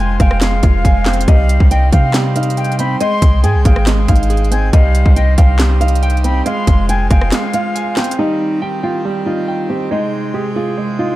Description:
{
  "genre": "hip hop, trap",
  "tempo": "139 BPM",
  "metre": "4/4",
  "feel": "half-time",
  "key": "C minor",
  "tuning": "A4 = 440 Hz",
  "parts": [
    { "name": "flamenco guitar", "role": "melody", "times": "0.0-11.2 s", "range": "Eb4 to G5", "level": "-21 LUFS", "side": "equal", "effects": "low-pass filter, tape echo" },
    { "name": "reedy silver concert flute", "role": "second line", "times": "0.0-8.1 s", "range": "Eb5 to C6", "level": "-23 LUFS", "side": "left 3 dB", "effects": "tape echo" },
    { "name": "warm concert grand piano", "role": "accompaniment", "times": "0.0-11.2 s", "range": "G3 to Ab5", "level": "-21 LUFS", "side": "right 3 dB", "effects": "low-pass filter" },
    { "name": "pipe organ, full organ", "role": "sustained chords", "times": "0.0-11.2 s", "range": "C3 to G5", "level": "-26 LUFS", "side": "equal", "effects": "none" },
    { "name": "clean 808-style bass", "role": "bass", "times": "0.0-7.3 s", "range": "F1 to C3", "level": "-14 LUFS", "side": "equal", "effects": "none" },
    { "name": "trap drum kit", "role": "drums", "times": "0.2-8.2 s", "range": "handclaps, hi-hat, kick drum, rim click, snare drum", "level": "-13 LUFS", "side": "equal", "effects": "none" }
  ],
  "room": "small room ambience",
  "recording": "dark, warm production",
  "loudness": "-11 LUFS",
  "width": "side -16 dB against mid",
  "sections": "0.0-8.2 A section; 8.2-11.2 B section",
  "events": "break 7.3-8.2",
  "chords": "0.0 Fm; 1.3 Cm; 3.0 Abmaj7; 4.7 Cm; 6.5 Fm; 8.2 Cm; 9.9 Abmaj7"
}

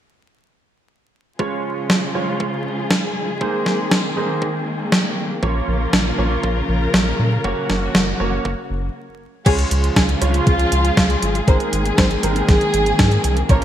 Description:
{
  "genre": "italo disco",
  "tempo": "119 BPM",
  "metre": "4/4",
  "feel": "straight",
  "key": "unclear",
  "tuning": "A4 = 439 Hz",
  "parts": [
    { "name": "dark symphonic string section", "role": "sustained chords", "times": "1.4-13.6 s", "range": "Db3 to Bb4", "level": "-24 LUFS", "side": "left 1 dB", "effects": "none" },
    { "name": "bright grand piano", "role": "stabs", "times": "1.4-13.6 s", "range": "F3 to Db5", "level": "-25 LUFS", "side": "right 4 dB", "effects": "analog chorus, low-pass filter, ping-pong delay" },
    { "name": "electronic kick drum", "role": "drums", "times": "1.4-13.6 s", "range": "none", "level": "-18 LUFS", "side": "equal", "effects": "high-pass filter on kick" },
    { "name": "clean 12-bit digital drum machine", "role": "drums", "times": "1.9-13.6 s", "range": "crash cymbal, hi-hat, snare drum", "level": "-20 LUFS", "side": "equal", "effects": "gated reverb" },
    { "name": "round analog bass", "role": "bass", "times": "5.4-13.6 s", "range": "Gb1 to Bb2", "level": "-20 LUFS", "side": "equal", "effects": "none" },
    { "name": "dark studio violin section", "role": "melody", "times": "9.5-13.6 s", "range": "F4 to Db5", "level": "-22 LUFS", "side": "equal", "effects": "ping-pong delay" }
  ],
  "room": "moderate plate reverb, RT60 1.7 s, studio reverb",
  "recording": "bright 1980s-style digital production, vinyl crackle",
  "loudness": "-16 LUFS",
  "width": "side -11 dB against mid",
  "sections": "1.4-9.5 A section; 9.5-13.6 B section",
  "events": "stop 9.0-9.5",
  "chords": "1.4 Db; 3.4 Abadd9; 5.4 Bbm; 7.4 Gb; 9.5 Db; 11.5 Abadd9"
}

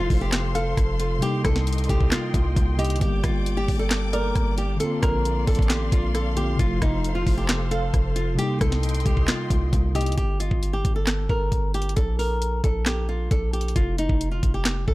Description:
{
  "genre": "hip hop, trap",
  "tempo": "134 BPM",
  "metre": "4/4",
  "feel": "half-time",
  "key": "G minor",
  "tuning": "A4 = 441 Hz",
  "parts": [
    { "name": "flamenco guitar", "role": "melody", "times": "0.0-14.9 s", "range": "Eb4 to Bb4", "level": "-28 LUFS", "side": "equal", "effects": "none" },
    { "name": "tine electric piano", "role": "accompaniment", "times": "0.0-10.2 s", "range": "C3 to G4", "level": "-29 LUFS", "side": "left 1 dB", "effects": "medium stereo tremolo" },
    { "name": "warm symphonic string section", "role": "sustained chords", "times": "0.0-10.2 s", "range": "Bb3 to D6", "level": "-34 LUFS", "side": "left 2 dB", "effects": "none" },
    { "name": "distorted 808-style bass", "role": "bass", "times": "0.0-14.9 s", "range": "F1 to C2", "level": "-25 LUFS", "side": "equal", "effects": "distortion" },
    { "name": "trap drum kit", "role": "drums", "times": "0.1-14.9 s", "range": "handclaps, hi-hat, kick drum, rim click, snare drum", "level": "-24 LUFS", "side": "equal", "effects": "none" },
    { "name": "warbly dusty pluck", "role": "second line", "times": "0.6-4.8, 7.7-10.2 s", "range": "D5 to F5", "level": "-35 LUFS", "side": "right 2 dB", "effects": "chorus, digital delay" }
  ],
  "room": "digital ambience",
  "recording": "dark, warm production",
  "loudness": "-20 LUFS",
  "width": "side -19 dB against mid",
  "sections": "0.0-10.2 A section; 10.2-14.9 B section",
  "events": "none",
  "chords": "0.0 F; 1.2 Cm7; 3.0 Gm; 4.8 Bbadd9; 6.6 F; 8.4 Cm7; 10.2 Gm; 12.0 Gmadd9/Bb; 13.8 N.C."
}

